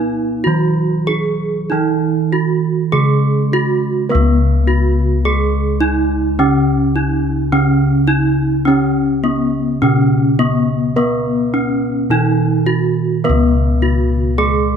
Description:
Javanese gamelan; 105 BPM; 4/4; straight; C# slendro; A4 = 440 Hz
gamelan-type bronze metallophone; melody; 0.0-14.8 s; B3-40c to G#4+20c; -18 LUFS; right 1 dB
gamelan-type bronze metallophone; accompaniment; 0.0-14.8 s; C#3 to B3-40c; -19 LUFS; right 2 dB
gamelan-type bossed gongs; bass; 0.0-14.8 s; C#2 to B4-40c; -17 LUFS; left 1 dB
light reverb; close, detailed microphones; -13 LUFS; side -7 dB against mid
0.0-4.1 A section; 4.1-14.8 B section

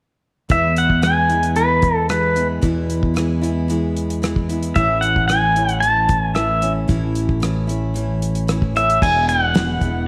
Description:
folk rock and heartland rock; 113 BPM; 4/4; straight; A4 = 440 Hz
pedal steel guitar; melody; 0.5-10.1 s; B4 to A5; -20 LUFS; equal
picked steel-string acoustic guitar; accompaniment; 0.5-10.1 s; E2 to E4; -26 LUFS; equal
fingered electric bass; bass; 0.5-10.1 s; E1 to E2; -24 LUFS; equal
damped 70s drum kit; drums; 0.5-9.9 s; crash cymbal, hi-hat, kick drum, rim click, snare drum; -24 LUFS; equal
light reverb, small room ambience; -18 LUFS; mono
0.5-9.0 A section; 9.0-10.1 B section
0.5 E; 4.8 A; 9.0 E

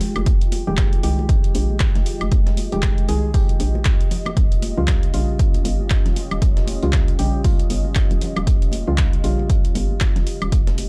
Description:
deep house; 117 BPM; 4/4; swing 59% on 16ths; A4 = 441 Hz
deep dark ambient pad; sustained chords; 0.0-10.9 s; Ab3 to Eb5; -34 LUFS; equal; chorus, built-in reverb, sidechain pumping
percussive organ stab; stabs; 0.0-10.9 s; Db3 to Ab4; -30 LUFS; equal; chorus, sidechain pumping, tape echo
breakbeat sampler-style drum kit; drums; 0.0-10.9 s; hi-hat, snare drum; -40 LUFS; equal; high-pass filter on hats, small room reverb, high-pass filter on snare, high-pass filter on room
deep house drum kit; drums; 0.0-10.9 s; handclaps, hi-hat, woodblock; -32 LUFS; equal; small room reverb
congas; percussion; 0.0-10.9 s; -35 LUFS; equal
hollow knocking FM bass; bass; 0.2-10.9 s; Eb1 to Db2; -26 LUFS; equal; tube saturation, sidechain pumping
electronic kick drum; drums; 0.3-10.6 s; -20 LUFS; equal; small room reverb
digital ambience; dry, gritty hardware recording, transformer saturation, cassette tape; -19 LUFS; mono
0.0-10.9 A section
0.0 Fm9; 4.1 Eb9

